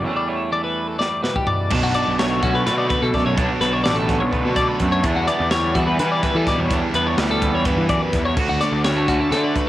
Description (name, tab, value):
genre	math rock and midwest emo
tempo	253 BPM (eighths)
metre	7/8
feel	straight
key	unclear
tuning	A4 = 440 Hz
part	twangy electric guitar	accompaniment	0.0-9.7 s	D2 to F#4	-24 LUFS	right 4 dB	lush chorus, cassette tape
part	twelve-string electric guitar	arpeggios	0.0-9.7 s	F#4 to D5	-22 LUFS	left 3 dB	spring reverb, cassette tape
part	fuzz picked electric bass	bass	0.0-9.5 s	A1 to E3	-23 LUFS	equal	overdrive
part	crisp fusion drum kit	drums	1.0-9.7 s	crash cymbal, hi-hat, kick drum, snare drum, toms	-25 LUFS	equal	none
part	cranked stack guitar	riff	1.7-9.7 s	B2 to F#4	-24 LUFS	equal	overdrive, cassette tape
room	studio reverb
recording	home recording on cassette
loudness	-17 LUFS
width	side -14 dB against mid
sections	0.0-1.7 A section; 1.7-9.7 B section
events	break 0.0-1.7; drum fill 1.0-1.7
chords	0.0 Em7; 1.7 Bm9; 5.0 Em9; 8.4 Dmaj7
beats	| 0.05 0.29 0.52 0.76 1.00 1.24 1.48 | 1.72 1.95 2.19 2.43 2.67 2.90 3.14 | 3.38 3.62 3.86 4.09 4.33 4.57 4.81 | 5.04 5.28 5.52 5.75 5.99 6.23 6.47 | 6.71 6.94 7.18 7.42 7.65 7.89 8.13 | 8.37 8.60 8.84 9.08 9.31 9.55